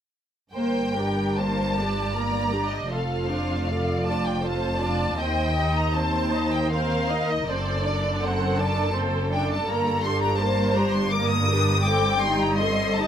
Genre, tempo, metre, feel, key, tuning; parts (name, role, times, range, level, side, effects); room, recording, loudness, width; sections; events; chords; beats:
classical, slow romantic movement for string orchestra; 71-84 BPM; 3/4; rubato; G minor; A4 = 445 Hz
warm symphonic violin section; melody; 0.5-13.1 s; D5 to Eb6; -28 LUFS; left 3 dB
rich studio viola section; accompaniment; 0.5-13.1 s; Bb3 to Eb5; -28 LUFS; right 2 dB
rich symphonic cello section; bass; 0.5-13.1 s; Eb2 to G2; -28 LUFS; equal
warm symphonic double bass section; bass; 0.5-13.1 s; F1 to Eb2; -29 LUFS; right 1 dB
warm symphonic violin section; second line; 0.6-13.1 s; A4 to G5; -30 LUFS; left 1 dB
light reverb; -22 LUFS; side -9 dB against mid
0.5-13.1 A section
0.5 Gm; 2.9 Dm/F; 5.2 Cm/Eb; 7.5 D7/F#; 9.7 Gm; 11.8 Am7b5/G
| 0.54 1.37 2.15 | 2.91 3.67 4.42 | 5.18 5.95 6.72 | 7.48 8.22 8.94 | 9.67 10.39 11.11 | 11.85 12.58